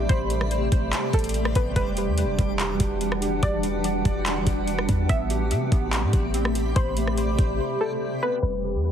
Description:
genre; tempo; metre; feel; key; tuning
hip hop, atmospheric cloud-rap; 144 BPM; 4/4; half-time; unclear; A4 = 444 Hz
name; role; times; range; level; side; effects
warbly dusty pluck; melody; 0.0-8.9 s; A4 to E5; -31 LUFS; left 2 dB; chorus, ping-pong delay
granular cloud pad; sustained chords; 0.0-8.9 s; C3 to F#5; -28 LUFS; equal; built-in reverb, sidechain pumping
warbly lo-fi synth keys; arpeggios; 0.0-8.9 s; G3 to B5; -31 LUFS; right 5 dB; chorus, ping-pong delay
clean 808-style bass; bass; 0.0-8.9 s; E1 to C3; -26 LUFS; equal; none
backwards swelling texture; texture; 0.0-8.9 s; G3 to B5; -36 LUFS; left 1 dB; built-in reverb
trap drum kit; drums; 0.1-7.5 s; handclaps, hi-hat, kick drum, rim click; -26 LUFS; equal; none
room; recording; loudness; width
digital ambience; heavily compressed radio sound, multiband compression, low-pass filter; -21 LUFS; side -9 dB against mid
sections
0.0-8.4 A section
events
break 7.6-8.4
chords
0.0 Am11; 1.8 Em9; 5.1 Am11

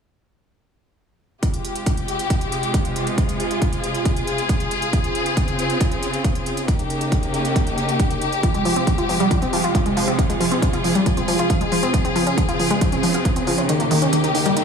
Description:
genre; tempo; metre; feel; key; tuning
uplifting trance; 137 BPM; 4/4; straight; F minor; A4 = 436 Hz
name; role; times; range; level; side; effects
rich chamber string section; sustained chords; 1.4-14.6 s; C3 to Ab4; -22 LUFS; left 1 dB; sidechain pumping
electronic hi-hat; drums; 1.4-14.6 s; none; -30 LUFS; right 2 dB; none
electronic kick drum; drums; 1.4-13.3 s; none; -22 LUFS; equal; none
wide unison pluck; arpeggios; 8.4-14.6 s; Eb3 to F4; -20 LUFS; equal; sidechain pumping, digital delay
reverse cymbal; sound effects; 14.6 s; none; -35 LUFS; right 4 dB; none
room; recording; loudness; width
light reverb, digital ambience; studio reverb; -18 LUFS; side -6 dB against mid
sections
1.4-14.6 A section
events
kick drops out 13.7-14.6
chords
1.4 Fmadd9; 4.9 Dbmaj7; 6.7 Eb7; 8.4 Fmadd9; 11.9 Dbmaj7; 13.7 Eb7

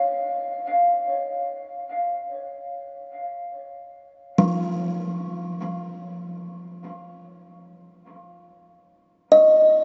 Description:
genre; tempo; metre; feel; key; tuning
ambient; free time; none; none; unclear; A4 = 440 Hz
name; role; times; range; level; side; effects
kalimba; solo; 0.0-9.8 s; F3 to F5; -23 LUFS; equal; diffuse ambient delay
room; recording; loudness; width
wet huge ambient reverb, RT60 7.2 s; dark, warm production, nothing above 7.8 kHz; -23 LUFS; mono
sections
0.0-5.2 A section; 5.2-9.8 B section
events
none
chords
0.0 Db; 5.2 F5

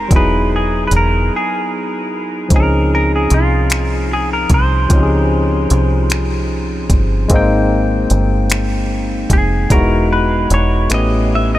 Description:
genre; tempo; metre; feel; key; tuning
slow six-eight R&B; 50 BPM (dotted quarters); 6/8; straight; unclear; A4 = 440 Hz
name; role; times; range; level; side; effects
semi-hollow electric guitar; melody; 0.0-11.6 s; F4 to E5; -20 LUFS; equal; wide subtle chorus
barky tine electric piano; accompaniment; 0.0-11.6 s; F3 to G5; -18 LUFS; left 2 dB; none
deep dub fingered electric bass; bass; 0.0-11.6 s; E1 to Db2; -16 LUFS; equal; none
smooth R&B drum kit; drums; 0.1-11.1 s; finger snaps, hi-hat, kick drum; -17 LUFS; equal; none
room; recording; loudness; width
moderate huge ambient reverb, RT60 8.4 s; dreamy mix soaked in reverb; -12 LUFS; side -14 dB against mid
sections
0.0-11.6 A section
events
clean electric guitar solo 0.0-11.6; break 1.3-2.5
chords
0.1 Emaj9; 2.5 Dbmaj9; 7.3 Abmaj9; 9.7 Emaj9; 10.9 A9

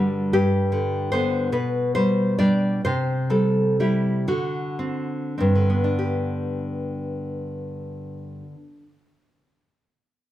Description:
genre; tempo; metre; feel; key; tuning
romantic piece for solo classical guitar; 33-52 BPM (dotted quarters); 6/8; rubato; G major; A4 = 439 Hz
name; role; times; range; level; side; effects
nylon-string guitar; solo; 0.0-9.0 s; G2 to D5; -21 LUFS; equal; none
room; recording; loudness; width
moderate recital hall reverb, RT60 1.4 s; none; -20 LUFS; side -13 dB against mid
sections
0.0-6.0 A section; 6.0-9.3 B section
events
slowing down 0.0-6.0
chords
0.3 G; 1.5 G/B; 2.8 C; 4.3 D7; 6.0 G

